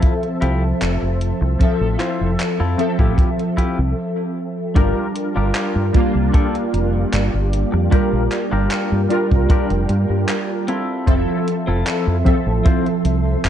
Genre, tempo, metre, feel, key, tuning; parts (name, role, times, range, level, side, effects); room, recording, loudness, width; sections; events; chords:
vaporwave; 76 BPM; 4/4; straight; G dorian; A4 = 441 Hz
warbly lo-fi synth keys; accompaniment; 0.0-13.5 s; F3 to E5; -20 LUFS; right 1 dB; ensemble chorus, tape echo
soft string machine; sustained chords; 0.0-13.5 s; F3 to C6; -30 LUFS; left 1 dB; ensemble chorus
clean electric guitar; riff; 0.0-13.1 s; C4 to C5; -27 LUFS; left 2 dB; wide subtle chorus, tape echo
gated 80s digital drum machine; drums; 0.0-13.5 s; handclaps, hi-hat; -27 LUFS; equal; gated reverb
kick drum; drums; 0.0-12.8 s; -16 LUFS; equal
fingered electric bass; bass; 0.4-13.5 s; F1 to G2; -19 LUFS; equal; tube saturation
light reverb; dark, warm production, cassette tape; -16 LUFS; side -10 dB against mid
0.0-4.8 A section; 4.8-13.5 B section
stop 4.0-4.8
0.0 Fmaj7; 4.8 Gm7; 10.7 Fmaj7